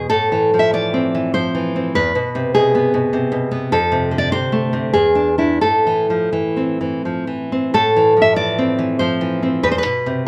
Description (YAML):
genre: romantic piece for solo classical guitar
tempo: 82-105 BPM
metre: 3/4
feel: rubato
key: A minor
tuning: A4 = 440 Hz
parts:
  - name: nylon-string guitar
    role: solo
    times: 0.0-10.3 s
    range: E2 to E5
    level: -17 LUFS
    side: equal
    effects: none
room: moderate large studio reverb, RT60 1.1 s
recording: band playing live in one room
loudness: -17 LUFS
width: mono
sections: 0.0-7.7 A section; 7.7-10.3 A section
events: none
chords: 0.1 Am; 1.9 E (rootless); 3.7 F; 4.9 E7; 5.6 Am; 9.6 E5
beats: | 0.10 0.74 1.34 | 1.95 2.55 3.13 | 3.72 4.32 4.93 | 5.59 6.31 7.03 | 7.72 8.36 8.99 | 9.63 10.26